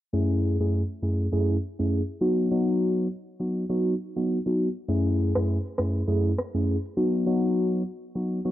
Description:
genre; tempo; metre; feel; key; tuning
afrobeats; 101 BPM; 4/4; swing 58% on 16ths; F# dorian; A4 = 439 Hz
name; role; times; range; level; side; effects
mellow tine electric piano; accompaniment; 0.1-8.5 s; F#2 to G#4; -23 LUFS; equal; phaser
electronic shaker and rim click; drums; 4.9-7.3 s; none; -31 LUFS; equal; none
room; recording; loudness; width
digital ambience; dry, gritty hardware recording, transformer saturation, low-pass filter; -23 LUFS; side -13 dB against mid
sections
0.1-8.5 A section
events
filter sweep 0.1-8.5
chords
0.1 F#m7; 2.2 B; 4.9 F#m7; 7.0 B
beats
| 0.14 0.73 1.32 1.92 | 2.51 3.11 3.70 4.29 | 4.89 5.48 6.08 6.67 | 7.26 7.86 8.45

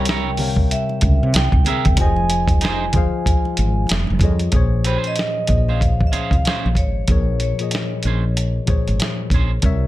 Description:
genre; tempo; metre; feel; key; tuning
R&B, neo-soul; 94 BPM; 4/4; swing 61% on 16ths; Bb minor; A4 = 440 Hz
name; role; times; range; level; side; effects
vibraphone with medium hard mallets; melody; 0.0-8.6 s; C5 to Ab5; -26 LUFS; right 2 dB; plate reverb, tape echo
electric guitar at the edge of break-up; second line; 0.0-9.5 s; Db4 to E5; -26 LUFS; right 7 dB; plate reverb
tine electric piano; accompaniment; 0.0-9.9 s; Bb2 to G5; -24 LUFS; left 4 dB; none
woody fretless electric bass; bass; 0.0-9.9 s; F1 to C3; -20 LUFS; equal; none
dusty soul sampler-style drum kit; drums; 0.1-9.8 s; hi-hat, kick drum, snare drum; -19 LUFS; equal; none
congas; percussion; 0.1-4.4 s; none; -30 LUFS; right 2 dB; none
room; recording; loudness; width
little or no reverb; none; -16 LUFS; side -15 dB against mid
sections
0.0-4.5 A section; 4.5-9.9 B section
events
none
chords
0.0 C7b9; 1.3 C7b13; 2.0 Fm7; 3.9 F7alt; 4.5 Bbm9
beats
0.06 0.70 1.33 | 1.97 2.61 3.25 3.89 | 4.53 5.17 5.80 6.44 | 7.08 7.72 8.36 8.99 | 9.63

